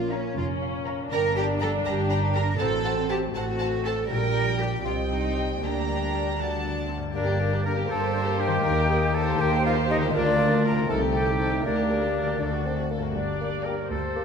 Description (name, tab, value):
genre	cinematic, playful, whimsical film cue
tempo	80 BPM (dotted quarters)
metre	6/8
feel	straight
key	G minor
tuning	A4 = 440 Hz
part	warm studio viola section	accompaniment	0.0-14.2 s	G3 to Eb5	-33 LUFS	right 1 dB	none
part	mellow French horn section	sustained chords	0.0-14.2 s	A3 to G4	-34 LUFS	left 1 dB	none
part	concert harp	arpeggios	0.0-14.2 s	G2 to Bb5	-32 LUFS	left 6 dB	none
part	rich studio double bass section	bass	0.0-14.2 s	F1 to Eb2	-30 LUFS	right 2 dB	none
part	warm studio cello section	bass	0.0-14.2 s	C2 to Bb4	-30 LUFS	right 3 dB	none
part	rich studio violin section	melody	0.1-13.8 s	D4 to Bb5	-34 LUFS	left 2 dB	none
part	dark chamber violin section	second line	0.1-13.8 s	A3 to G5	-36 LUFS	left 2 dB	none
part	silver concert flute	second line	7.1-14.2 s	D5 to Bb5	-29 LUFS	left 1 dB	none
part	warm bassoon	accompaniment	7.1-14.2 s	A3 to D4	-32 LUFS	left 1 dB	none
part	clear oboe	second line	7.2-14.2 s	D4 to Bb4	-33 LUFS	equal	none
part	warm clarinet	second line	7.2-14.2 s	Eb4 to G4	-36 LUFS	left 1 dB	none
room	wet recital hall reverb, RT60 1.5 s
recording	none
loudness	-23 LUFS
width	side -6 dB against mid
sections	0.0-7.1 A section; 7.1-14.2 B section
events	none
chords	0.0 Bbm; 1.1 Gm; 2.6 F#dim/A; 4.1 Gm/Bb; 4.9 Cm; 5.6 Gm/D; 6.4 D; 7.1 Gm; 8.6 Eb; 10.1 Bb/D; 10.9 Am7b5/C; 11.6 Gm/D; 12.4 D; 13.2 Gm